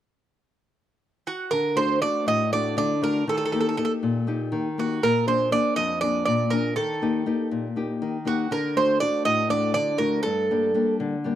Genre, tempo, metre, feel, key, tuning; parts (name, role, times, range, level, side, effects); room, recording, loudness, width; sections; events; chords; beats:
greek folk, Greek bouzouki band; 241 BPM (eighths); 7/8; straight; D phrygian dominant; A4 = 441 Hz
Greek bouzouki; melody; 1.3-10.9 s; F#4 to Eb5; -24 LUFS; right 3 dB
nylon-string guitar; accompaniment; 1.5-11.4 s; F2 to Ab4; -25 LUFS; left 3 dB
light reverb, small room ambience; dry, close 1970s-style studio recording; -21 LUFS; side -11 dB against mid
0.0-1.5 A section; 1.5-11.4 B section
0.0 N.C.; 1.5 D; 3.3 Eb; 5.0 Bb7; 6.8 Eb; 8.5 D; 10.2 Gm
0.03 0.28 0.53 0.78 1.03 1.28 | 1.53 1.78 2.03 2.28 2.53 2.78 3.03 | 3.28 3.52 3.77 4.02 4.27 4.52 4.77 | 5.02 5.27 5.52 5.77 6.02 6.27 6.52 | 6.77 7.02 7.26 7.51 7.76 8.01 8.26 | 8.51 8.76 9.01 9.25 9.50 9.75 10.00 | 10.25 10.50 10.74 10.99 11.24